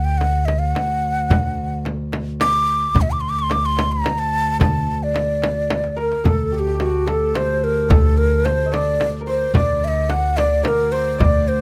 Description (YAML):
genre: Persian modal ensemble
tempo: 73 BPM (dotted quarters)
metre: 6/8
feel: straight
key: D dastgah homayun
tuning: A4 = 440 Hz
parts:
  - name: breathy mellow ney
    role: melody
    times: 0.0-11.6 s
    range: F#4 to D6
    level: -22 LUFS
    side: equal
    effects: none
  - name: upright bass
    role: bass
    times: 0.0-11.6 s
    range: D2 to D3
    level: -23 LUFS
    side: equal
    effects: none
  - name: warm double bass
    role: drone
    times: 0.0-11.6 s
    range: D2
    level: -29 LUFS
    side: equal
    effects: none
  - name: frame drum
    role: percussion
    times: 0.2-11.3 s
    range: none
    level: -26 LUFS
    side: equal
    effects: none
  - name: tombak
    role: percussion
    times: 0.2-11.3 s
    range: none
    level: -26 LUFS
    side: equal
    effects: none
  - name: santur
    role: second line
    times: 6.0-11.6 s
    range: G4 to F#5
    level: -30 LUFS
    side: equal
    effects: none
room: little or no reverb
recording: close, detailed microphones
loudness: -19 LUFS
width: mono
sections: 0.0-6.3 A section; 6.3-11.6 B section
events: drum fill 5.7-6.3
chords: none